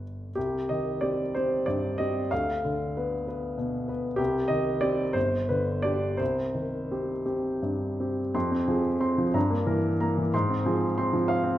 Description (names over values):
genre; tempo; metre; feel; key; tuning
classical, romantic character piece for solo piano; 54-66 BPM (dotted quarters); 6/8; rubato; C minor, F minor from 8.3 s; A4 = 440 Hz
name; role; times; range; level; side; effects
warm baby grand piano; solo; 0.0-11.6 s; G1 to C6; -25 LUFS; equal; none
room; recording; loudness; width
wet recital hall reverb, RT60 1.3 s; none; -25 LUFS; side -13 dB against mid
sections
0.0-8.3 A section; 8.3-11.6 B section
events
none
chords
0.4 Cm; 2.3 Bdim/D; 4.2 Cm; 5.2 G5; 6.2 Cm; 8.3 Fm; 9.4 Edim/G; 10.3 Fm/Ab